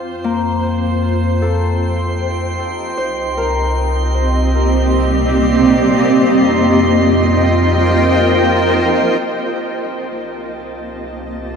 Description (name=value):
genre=ambient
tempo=free time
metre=none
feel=none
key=C dorian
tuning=A4 = 439 Hz
part: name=granular cloud pad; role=sustained chords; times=0.0-11.6 s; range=Bb3 to G5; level=-15 LUFS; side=equal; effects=built-in reverb
part: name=Celtic harp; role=arpeggios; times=0.0-11.6 s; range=Bb3 to G6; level=-24 LUFS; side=left 4 dB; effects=ping-pong delay
part: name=round analog bass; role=bass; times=0.0-11.6 s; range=C2 to F2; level=-19 LUFS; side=equal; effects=none
part: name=drifting glass-harmonics texture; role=texture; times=0.0-11.6 s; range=A5 to C6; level=-26 LUFS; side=right 4 dB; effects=chorus, built-in reverb
room=wet huge ambient reverb, RT60 8.3 s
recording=dreamy mix soaked in reverb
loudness=-12 LUFS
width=side -6 dB against mid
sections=0.0-9.2 A section; 9.2-11.6 B section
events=fade-in on ambient pad 0.0-9.2; fade-in on synth texture 0.0-9.2; fade-out on harp 0.0-9.2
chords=0.0 F9sus4; 3.0 Cm7; 6.1 F9sus4; 9.2 Cm7